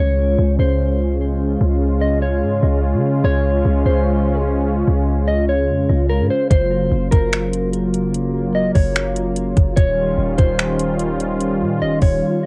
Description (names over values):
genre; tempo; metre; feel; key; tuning
hip hop, atmospheric cloud-rap; 147 BPM; 4/4; half-time; Db major; A4 = 440 Hz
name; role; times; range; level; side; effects
mellow electric guitar; melody; 0.0-12.5 s; Bb4 to Eb5; -25 LUFS; equal; cassette tape, analog delay
warm analog pad; sustained chords; 0.0-12.5 s; Db3 to F4; -22 LUFS; equal; chorus, sidechain pumping
warm 808-style bass; bass; 0.0-12.2 s; Eb1 to Db3; -22 LUFS; equal; none
smooth R&B drum kit; drums; 6.5-12.1 s; finger snaps, hi-hat, kick drum; -18 LUFS; equal; cassette tape
room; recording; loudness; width
light reverb; home recording on cassette; -18 LUFS; mono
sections
0.0-12.5 A section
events
break 12.2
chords
0.0 Dbmaj7; 6.5 Gbmaj7; 9.8 Eb9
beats
0.39 0.79 1.20 | 1.61 2.02 2.43 2.83 | 3.24 3.65 4.06 4.47 | 4.88 5.28 5.69 6.10 | 6.51 6.92 7.32 7.73 | 8.14 8.55 8.96 9.37 | 9.77 10.18 10.59 11.00 | 11.41 11.81 12.22